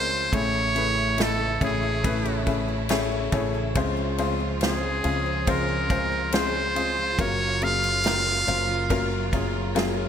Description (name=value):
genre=pop ballad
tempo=70 BPM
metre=4/4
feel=straight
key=unclear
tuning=A4 = 441 Hz
part: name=trumpet with metal mute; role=melody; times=0.0-9.3 s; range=Ab4 to F5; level=-26 LUFS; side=right 1 dB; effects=ping-pong delay
part: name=felt-muted upright piano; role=accompaniment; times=0.0-10.1 s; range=A2 to F5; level=-28 LUFS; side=left 5 dB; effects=none
part: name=clear studio string section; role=sustained chords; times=0.0-10.1 s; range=Db3 to C5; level=-34 LUFS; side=right 2 dB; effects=none
part: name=picked steel-string acoustic guitar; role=arpeggios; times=0.0-10.1 s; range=Db3 to Bb4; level=-34 LUFS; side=right 4 dB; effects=lush chorus, ping-pong delay
part: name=mellow fretless electric bass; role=bass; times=0.0-10.1 s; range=Gb1 to Db2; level=-30 LUFS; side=right 1 dB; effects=lush chorus
part: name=natural country drum kit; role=drums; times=0.3-10.0 s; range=kick drum, ride cymbal, snare drum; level=-30 LUFS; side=right 1 dB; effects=gated reverb
room=moderate plate reverb, RT60 2.4 s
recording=bright 1980s-style digital production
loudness=-22 LUFS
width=side -8 dB against mid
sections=0.0-10.1 A section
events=felt piano fill 8.9-10.1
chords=0.3 Amaj7; 3.8 Dbmaj7; 7.2 Gbmaj7